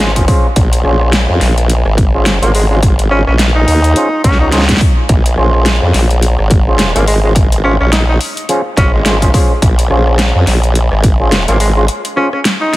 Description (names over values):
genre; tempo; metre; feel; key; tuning
glitch hop; 106 BPM; 4/4; swing 58% on 16ths; Bb minor; A4 = 443 Hz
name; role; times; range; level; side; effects
breathy tenor saxophone; melody; 0.0-12.8 s; Ab3 to Eb4; -18 LUFS; equal; digital delay
overdriven clav; stabs; 0.0-12.3 s; Db4 to Db5; -18 LUFS; equal; auto-wah, sidechain pumping, digital delay
formant-sweep wobble bass; bass; 0.0-11.9 s; Ab1 to F2; -12 LUFS; equal; chorus, overdrive
dubstep drum kit; drums; 0.0-12.8 s; hi-hat, rim click, snare drum; -17 LUFS; equal; small room ambience
electronic kick drum; drums; 0.2-11.2 s; none; -11 LUFS; equal; small room ambience
room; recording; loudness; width
little or no reverb; dense, heavily limited modern master, vinyl crackle; -9 LUFS; side -17 dB against mid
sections
0.0-12.8 A section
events
break 11.9-12.8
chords
0.0 Bbm9